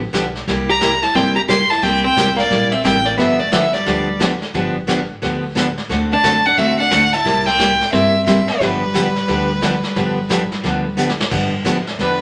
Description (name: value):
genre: country, western swing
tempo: 177 BPM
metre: 4/4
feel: swing 63% on 8ths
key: G mixolydian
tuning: A4 = 441 Hz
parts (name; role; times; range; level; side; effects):
- upright bass; bass; 0.0-12.2 s; G1 to G2; -30 LUFS; equal; none
- picked steel-string acoustic guitar; accompaniment; 0.1-12.2 s; C3 to A4; -22 LUFS; equal; none
- vintage brush drum kit; drums; 0.1-12.2 s; brushed snare drum, crash cymbal, hi-hat, kick drum, snare drum; -26 LUFS; equal; none
- clear fiddle; melody; 0.7-12.2 s; B4 to C6; -19 LUFS; equal; none
- archtop guitar, miked and amplified; second line; 0.7-11.0 s; G3 to G4; -24 LUFS; equal; none
room: wet studio reverb, RT60 0.7 s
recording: none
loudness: -16 LUFS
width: mono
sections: 0.0-11.3 A section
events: drum fill 11.0-11.3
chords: 0.5 C7; 3.2 G7; 5.9 D7; 7.3 C7; 8.6 G7